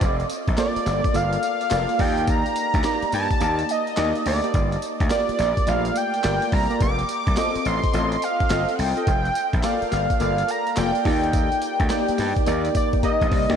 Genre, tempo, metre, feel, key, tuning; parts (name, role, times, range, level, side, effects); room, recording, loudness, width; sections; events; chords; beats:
R&B, new jack swing; 106 BPM; 4/4; swing 64% on 16ths; A4 = 441 Hz
octave-doubled lead; melody; 0.0-13.6 s; D5 to D6; -24 LUFS; equal; chorus, ping-pong delay
warm analog keys; accompaniment; 0.0-13.6 s; A3 to Eb5; -25 LUFS; equal; chorus
gritty slap bass; bass; 0.0-13.6 s; F1 to G2; -25 LUFS; equal; overdrive
boom bap sampler-style drum kit; drums; 0.0-13.6 s; handclaps, hi-hat, kick drum, snare drum, tambourine; -25 LUFS; equal
moderate huge ambient reverb, RT60 5.0 s; dreamy mix soaked in reverb; -19 LUFS; side -8 dB against mid
0.0-13.6 A section
kick muted 3.4-4.5; drum fill 13.0-13.6
0.0 Bbmaj7/F; 2.0 Ebmaj7; 4.5 Gm7; 6.8 F7; 9.1 Bbmaj7/F; 11.1 Ebmaj7
| 0.01 0.58 1.15 1.71 | 2.28 2.84 3.41 3.98 | 4.54 5.11 5.67 6.24 | 6.81 7.37 7.94 8.50 | 9.07 9.64 10.20 10.77 | 11.33 11.90 12.47 13.03